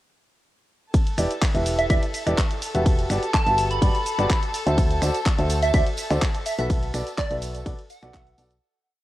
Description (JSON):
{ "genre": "piano house", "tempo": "125 BPM", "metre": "4/4", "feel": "straight", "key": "E minor", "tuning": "A4 = 440 Hz", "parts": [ { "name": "dark studio violin section", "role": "sustained chords", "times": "0.9-8.6 s", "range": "A4 to A5", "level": "-33 LUFS", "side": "left 1 dB", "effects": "sidechain pumping, cassette tape" }, { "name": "electronic kick drum", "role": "drums", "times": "0.9-8.2 s", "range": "none", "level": "-22 LUFS", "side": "equal", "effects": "cassette tape" }, { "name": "house drum kit", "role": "drums", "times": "0.9-8.6 s", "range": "finger snaps, handclaps, hi-hat, ride cymbal, shaker", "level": "-31 LUFS", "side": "equal", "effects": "cassette tape" }, { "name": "clear grand piano", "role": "riff", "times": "1.2-8.5 s", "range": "E4 to E5", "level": "-28 LUFS", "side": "equal", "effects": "sidechain pumping, cassette tape, tape echo" }, { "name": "solid FM bass", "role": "bass", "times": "1.2-8.6 s", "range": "E1 to D2", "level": "-25 LUFS", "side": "equal", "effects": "sidechain pumping" }, { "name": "plucky unison lead", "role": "melody", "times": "1.8-8.4 s", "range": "D5 to B5", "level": "-26 LUFS", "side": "right 1 dB", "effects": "lush chorus, cassette tape, tape echo" }, { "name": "tambourine", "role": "percussion", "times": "4.8-8.6 s", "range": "none", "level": "-41 LUFS", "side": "right 9 dB", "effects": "none" } ], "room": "light reverb", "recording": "home recording on cassette", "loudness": "-20 LUFS", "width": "side -15 dB against mid", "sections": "0.9-8.6 drop", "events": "drop 0.9-8.6; fade-out 6.1-8.6", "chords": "0.9 Em7; 2.9 Gmaj7; 4.8 D7; 6.7 Bm7" }